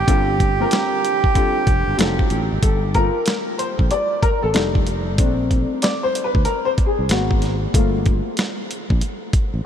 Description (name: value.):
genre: hip hop, jazz-hop.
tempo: 94 BPM.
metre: 4/4.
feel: swing 64% on 16ths.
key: G minor.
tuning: A4 = 440 Hz.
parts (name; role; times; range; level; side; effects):
accordion; melody; 0.0-2.0 s; G4; -23 LUFS; right 5 dB; analog delay.
sustaining fretless electric bass; bass; 0.0-9.6 s; F1 to D2; -23 LUFS; equal; none.
warm upright piano; accompaniment; 0.1-8.7 s; D3 to D5; -22 LUFS; left 3 dB; lush chorus.
dusty soul sampler-style drum kit; drums; 0.1-9.5 s; hi-hat, kick drum, snare drum; -20 LUFS; equal; none.
room: moderate huge ambient reverb, RT60 7.9 s.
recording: dreamy mix soaked in reverb.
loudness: -16 LUFS.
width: side -9 dB against mid.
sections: 0.0-2.6 A section; 2.6-9.7 B section.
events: upright piano solo 2.6-9.7.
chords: 0.1 Gm9; 2.0 F7b9; 2.6 Gm9; 4.5 F13; 5.2 Bbmaj9; 7.1 Abm9; 7.7 Gm9.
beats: | 0.08 0.72 1.35 1.99 | 2.63 3.27 3.91 4.54 | 5.18 5.82 6.46 7.10 | 7.74 8.38 9.01.